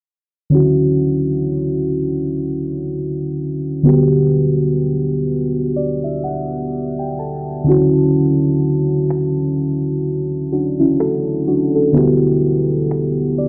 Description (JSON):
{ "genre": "contemporary R&B", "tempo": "63 BPM", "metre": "4/4", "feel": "swing 58% on 16ths", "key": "D major", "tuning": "A4 = 440 Hz", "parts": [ { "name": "muted felt-like synth keys", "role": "accompaniment", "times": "0.5-13.5 s", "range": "D3 to A5", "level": "-17 LUFS", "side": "equal", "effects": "chorus" }, { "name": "electronic finger snaps", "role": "drums", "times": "9.1-13.2 s", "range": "none", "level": "-41 LUFS", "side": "equal", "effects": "vintage 12-bit sampler grit" } ], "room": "light reverb, digital ambience", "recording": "low-pass filter", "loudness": "-17 LUFS", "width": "mono", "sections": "0.5-13.5 A section", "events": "filter sweep 0.5-13.5; synth keys fill 5.3-8.1, 12.9-13.5", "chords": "0.5 Dmaj9; 3.9 Gmaj13/D; 7.7 Dmaj9; 12.0 Gmaj13/D" }